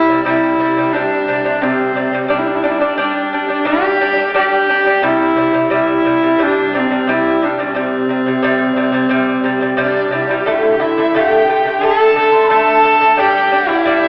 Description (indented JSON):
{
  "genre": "mongolian traditional, Mongolian folk",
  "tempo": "88 BPM",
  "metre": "4/4",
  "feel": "straight",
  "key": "C gong mode",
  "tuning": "A4 = 440 Hz",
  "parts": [
    { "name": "clear horsehead fiddle", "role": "melody", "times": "0.0-14.1 s", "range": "C4 to A4", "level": "-17 LUFS", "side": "equal", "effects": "none" },
    { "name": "lute", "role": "arpeggios", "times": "0.0-14.1 s", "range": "C3 to D4", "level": "-18 LUFS", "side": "equal", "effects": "none" },
    { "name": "mellow large dizi", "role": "second line", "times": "9.8-14.1 s", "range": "D5 to C6", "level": "-20 LUFS", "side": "equal", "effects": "none" }
  ],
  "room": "wet recital hall reverb, RT60 1.6 s",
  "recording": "recorded in a church or concert hall, AM radio sound",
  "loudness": "-14 LUFS",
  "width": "mono",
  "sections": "0.0-10.5 A section; 10.5-14.1 B section",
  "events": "none",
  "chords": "0.0 C5; 2.3 G5; 5.0 C5; 10.5 D5; 13.2 G5",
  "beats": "0.26 0.95 1.63 | 2.31 3.00 3.68 4.36 | 5.04 5.72 6.40 7.08 | 7.76 8.44 9.12 9.80 | 10.47 11.15 11.82 12.50 | 13.17 13.84"
}